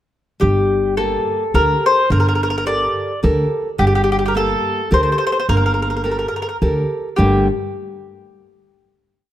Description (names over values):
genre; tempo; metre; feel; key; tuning
italian folk, Italian serenade; 106 BPM; 3/4; swing 54% on 8ths; G minor; A4 = 440 Hz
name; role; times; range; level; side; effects
mandolin; melody; 0.4-7.5 s; G4 to D5; -18 LUFS; left 2 dB; none
nylon-string guitar; accompaniment; 0.4-7.5 s; G2 to Bb4; -22 LUFS; right 1 dB; none
upright bass; bass; 0.4-7.5 s; G1 to D2; -19 LUFS; equal; none
room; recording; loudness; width
light reverb; close, detailed microphones; -15 LUFS; side -12 dB against mid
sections
0.4-7.2 A section; 7.2-8.9 final chord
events
none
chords
0.4 Gmadd9